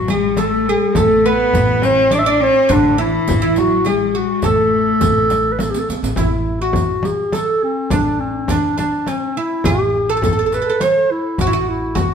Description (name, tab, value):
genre	Arabic maqam ensemble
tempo	104 BPM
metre	3/4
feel	straight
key	A maqam rast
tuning	A4 = 440 Hz
part	mellow clarinet	melody	0.0-12.1 s	C4+46c to E5	-17 LUFS	equal	none
part	oud	second line	0.0-12.1 s	C4+50c to D5	-21 LUFS	right 4 dB	none
part	warm cello	second line	0.0-5.5 s	D3 to D4	-19 LUFS	left 6 dB	none
part	upright bass	bass	0.0-12.1 s	A1 to B1	-24 LUFS	equal	none
part	darbuka	percussion	0.1-12.1 s	none	-26 LUFS	equal	none
part	frame drum	percussion	0.1-12.1 s	none	-23 LUFS	left 2 dB	none
part	riq	percussion	0.1-12.1 s	none	-29 LUFS	right 4 dB	none
room	wet stone room reverb, RT60 1.4 s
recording	band playing live in one room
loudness	-14 LUFS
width	side -7 dB against mid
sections	0.0-6.2 A section; 6.2-12.1 B section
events	drum fill 5.6-6.2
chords	none